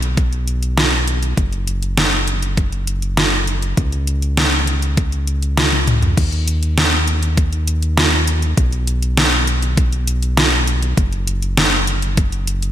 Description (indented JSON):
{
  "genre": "synthwave",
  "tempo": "100 BPM",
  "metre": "4/4",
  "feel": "straight",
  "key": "unclear",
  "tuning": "A4 = 440 Hz",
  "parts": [
    { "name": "round analog bass", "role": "bass", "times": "0.0-12.7 s", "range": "Gb1 to Eb2", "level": "-18 LUFS", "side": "equal", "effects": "none" },
    { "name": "pop drum kit", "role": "drums", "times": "0.0-12.7 s", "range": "crash cymbal, hi-hat, snare drum, toms", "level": "-18 LUFS", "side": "equal", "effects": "overdrive, gated reverb" },
    { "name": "electronic kick drum", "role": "drums", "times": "0.2-12.3 s", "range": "none", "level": "-16 LUFS", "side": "equal", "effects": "overdrive" }
  ],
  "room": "light reverb",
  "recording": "bright 1980s-style digital production",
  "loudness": "-15 LUFS",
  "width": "side -11 dB against mid",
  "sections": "0.0-6.2 A section; 6.2-12.7 B section",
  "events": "drum fill 5.6-6.2",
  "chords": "none",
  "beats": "0.17 0.78 | 1.38 1.98 2.58 3.17 | 3.77 4.38 4.97 5.58 | 6.17 6.78 7.38 7.97 | 8.57 9.18 9.78 10.38 | 10.97 11.57 12.18"
}